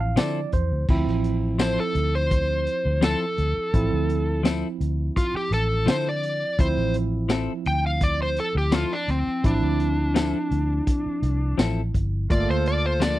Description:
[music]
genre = straight-eighth soul blues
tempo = 84 BPM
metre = 4/4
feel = straight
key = D minor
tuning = A4 = 440 Hz
[part]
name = barky tine electric piano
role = accompaniment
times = 0.0-13.2 s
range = F3 to F5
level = -30 LUFS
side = right 6 dB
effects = overdrive, auto-pan
[part]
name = vintage muted fingered electric bass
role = bass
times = 0.0-13.2 s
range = G1 to D3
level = -25 LUFS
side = equal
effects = none
[part]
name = semi-hollow electric guitar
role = stabs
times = 0.2-13.2 s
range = F3 to A4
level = -27 LUFS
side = left 7 dB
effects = none
[part]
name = crunchy breakbeat drum kit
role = drums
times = 0.2-13.2 s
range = crash cymbal, hi-hat, kick drum, snare drum, tambourine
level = -24 LUFS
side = equal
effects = none
[part]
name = overdriven slide guitar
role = melody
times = 1.6-13.2 s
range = C4 to G5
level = -25 LUFS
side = left 1 dB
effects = slapback echo
[part]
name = warm horn section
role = sustained chords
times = 12.3-13.0 s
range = F4 to A4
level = -36 LUFS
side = left 1 dB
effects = none
[sound]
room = little or no reverb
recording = dry, close 1970s-style studio recording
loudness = -21 LUFS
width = side -15 dB against mid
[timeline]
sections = 0.9-13.2 A section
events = tine electric piano fill 0.0-0.9; electric slide guitar solo 0.9-13.2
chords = 0.0 Dm9; 12.3 Gm9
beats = 0.17 | 0.88 1.60 2.31 3.02 | 3.73 4.45 5.16 5.87 | 6.59 7.30 8.01 8.73 | 9.44 10.15 10.87 11.58 | 12.30 13.01

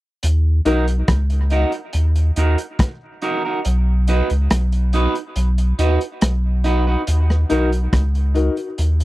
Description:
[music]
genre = dub reggae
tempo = 70 BPM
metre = 4/4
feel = straight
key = Eb minor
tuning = A4 = 441 Hz
[part]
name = warm sub bass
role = bass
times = 0.2-9.0 s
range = Cb2 to Eb2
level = -16 LUFS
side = equal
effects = none
[part]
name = crunchy breakbeat drum kit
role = drums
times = 0.2-9.0 s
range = hi-hat, kick drum, rim click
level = -21 LUFS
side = equal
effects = none
[part]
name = electric guitar through a small old amp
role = accompaniment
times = 0.7-7.7 s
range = Eb4 to B4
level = -23 LUFS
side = right 2 dB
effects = phaser, dub echo
[part]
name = clear upright piano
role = stabs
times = 0.7-0.8, 7.5-8.7 s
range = Eb4 to Bb4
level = -22 LUFS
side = left 4 dB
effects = dub echo
[sound]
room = little or no reverb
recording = dry, close 1970s-style studio recording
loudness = -16 LUFS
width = side -18 dB against mid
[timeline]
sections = 0.2-7.1 A section; 7.1-9.0 B section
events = kick muted 3.6-7.1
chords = 0.2 Ebm; 3.6 B; 7.1 Ebm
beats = | 0.23 1.08 1.94 2.79 | 3.65 4.50 5.36 6.21 | 7.07 7.93 8.78

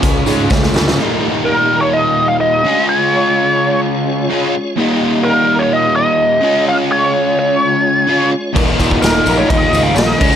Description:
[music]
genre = classic rock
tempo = 127 BPM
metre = 4/4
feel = straight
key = Eb mixolydian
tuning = A4 = 444 Hz
[part]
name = tonewheel organ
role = sustained chords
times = 0.0-10.4 s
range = Ab3 to F5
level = -22 LUFS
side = left 1 dB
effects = slow rotary speaker, overdrive, chorus vibrato
[part]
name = crunchy overdriven guitar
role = riff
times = 0.0-10.4 s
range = Eb2 to Ab4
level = -16 LUFS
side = equal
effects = none
[part]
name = overdriven electric guitar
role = riff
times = 0.0-1.0, 8.5-10.4 s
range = Eb2 to Db4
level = -19 LUFS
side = left 1 dB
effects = none
[part]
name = growling fingered electric bass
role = bass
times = 0.0-0.9, 8.6-10.4 s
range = Eb1 to Ab2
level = -19 LUFS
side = equal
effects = overdrive
[part]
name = raw garage drum kit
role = drums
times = 0.0-1.0, 8.6-10.3 s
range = crash cymbal, hi-hat, kick drum, ride cymbal, snare drum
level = -16 LUFS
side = equal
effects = none
[part]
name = tambourine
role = percussion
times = 0.0-0.8, 8.8-10.4 s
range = none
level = -31 LUFS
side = left 5 dB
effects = none
[part]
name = biting lead guitar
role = melody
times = 1.5-10.4 s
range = Bb4 to F5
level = -14 LUFS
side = equal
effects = wah, overdrive
[sound]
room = light reverb, small room ambience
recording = none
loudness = -11 LUFS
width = side -9 dB against mid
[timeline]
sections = 1.0-10.4 A section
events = drum fill 0.5-1.0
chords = 0.0 Db; 1.0 Eb; 2.6 Db; 4.8 Eb; 6.4 Db; 8.6 Eb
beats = 0.02 0.50 | 0.98 1.45 1.93 2.41 | 2.88 3.36 3.83 4.31 | 4.78 5.25 5.73 6.20 | 6.67 7.14 7.62 8.09 | 8.56 9.03 9.50 9.97

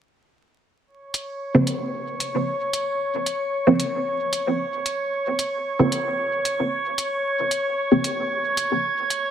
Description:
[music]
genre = dub techno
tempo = 113 BPM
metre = 4/4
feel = straight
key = Bb minor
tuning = A4 = 440 Hz
[part]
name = drifting glass-harmonics texture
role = texture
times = 1.1-9.3 s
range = Db5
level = -24 LUFS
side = equal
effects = chorus, built-in reverb
[part]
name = electronic hi-hat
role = drums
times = 1.1-9.2 s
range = none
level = -27 LUFS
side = equal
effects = none
[part]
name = filtered dub chord stab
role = stabs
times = 1.5-8.1 s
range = Db3 to C4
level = -22 LUFS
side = right 1 dB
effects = phaser, dub echo
[sound]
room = wet plate reverb, RT60 2.5 s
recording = dreamy mix soaked in reverb, vinyl crackle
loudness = -21 LUFS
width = side -9 dB against mid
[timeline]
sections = 0.9-9.3 A section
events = filter sweep on synth stab 0.9-9.3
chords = 0.9 Bbmadd9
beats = | 0.88 1.41 1.94 2.47 | 3.00 3.53 4.06 4.59 | 5.12 5.65 6.18 6.71 | 7.25 7.78 8.31 8.84

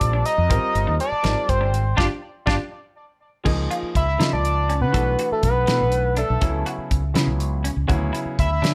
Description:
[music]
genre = electric jazz fusion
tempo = 81 BPM (dotted quarters)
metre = 6/8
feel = straight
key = unclear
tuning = A4 = 440 Hz
[part]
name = lead with added fifth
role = melody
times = 0.0-8.7 s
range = A4 to E5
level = -25 LUFS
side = equal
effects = chorus, tape echo
[part]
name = warm grand piano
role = accompaniment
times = 0.0-8.7 s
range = C#3 to Bb4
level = -32 LUFS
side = equal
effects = none
[part]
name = mellow fretless electric bass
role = bass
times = 0.0-8.7 s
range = G1 to D3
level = -25 LUFS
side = equal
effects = subtle chorus
[part]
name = damped 70s drum kit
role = drums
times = 0.0-8.7 s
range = crash cymbal, hi-hat, kick drum, snare drum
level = -26 LUFS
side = equal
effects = none
[part]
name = semi-hollow electric guitar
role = stabs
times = 0.1-8.7 s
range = C4 to A4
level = -33 LUFS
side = equal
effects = analog chorus
[sound]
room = light reverb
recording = none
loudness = -21 LUFS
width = mono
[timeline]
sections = 0.0-3.5 A section; 3.5-8.7 B section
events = band accent 2.0-3.5; grand piano fill 2.7-3.5; analog synth lead solo 3.5-8.7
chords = 0.5 Abmaj9#11; 2.0 G5; 2.7 N.C.; 3.5 C#69; 4.9 B7sus4; 6.4 A69/C#; 7.9 Dmaj9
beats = | 0.49 1.24 | 1.97 2.71 | 3.45 4.19 | 4.93 5.67 | 6.41 7.15 | 7.89 8.63

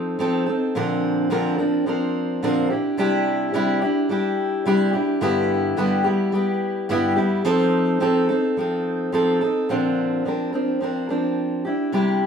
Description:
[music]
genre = pop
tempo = 107 BPM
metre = 4/4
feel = swing 60% on 16ths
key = unclear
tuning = A4 = 440 Hz
[part]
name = fingerpicked steel-string acoustic guitar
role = solo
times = 0.0-12.3 s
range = G2 to Bb4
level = -19 LUFS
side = equal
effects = none
[sound]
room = wet studio reverb, RT60 0.8 s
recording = band playing live in one room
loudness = -19 LUFS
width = side -7 dB against mid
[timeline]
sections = 0.0-9.7 A section; 9.7-12.3 B section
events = none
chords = 0.0 F7; 0.7 Bbadd9; 2.7 Cadd9; 5.2 G6; 7.5 F7; 9.7 Bbadd9; 11.7 Cadd9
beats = 0.19 | 0.75 1.31 1.86 2.42 | 2.98 3.54 4.10 4.66 | 5.22 5.78 6.33 6.89 | 7.45 8.01 8.57 9.13 | 9.69 10.25 10.81 11.37 | 11.93

